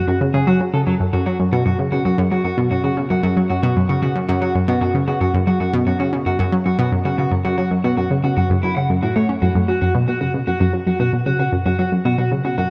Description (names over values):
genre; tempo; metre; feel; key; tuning
ambient, sequencer-driven space music; 114 BPM; 4/4; straight; unclear; A4 = 440 Hz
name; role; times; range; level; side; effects
electric guitar at the edge of break-up; arpeggios; 0.0-12.7 s; F#3 to F#5; -25 LUFS; equal; analog delay, shimmer reverb
analog pluck; riff; 0.1-12.6 s; F#2 to C#4; -19 LUFS; equal; chorus, analog delay
room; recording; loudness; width
moderate plate reverb, RT60 3.4 s; dark, warm production; -18 LUFS; mono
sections
0.0-12.7 A section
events
none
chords
0.0 F#5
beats
0.47 | 1.00 1.52 2.05 2.58 | 3.10 3.63 4.16 4.68 | 5.21 5.74 6.26 6.79 | 7.32 7.84 8.37 8.89 | 9.42 9.95 10.47 11.00 | 11.53 12.05 12.58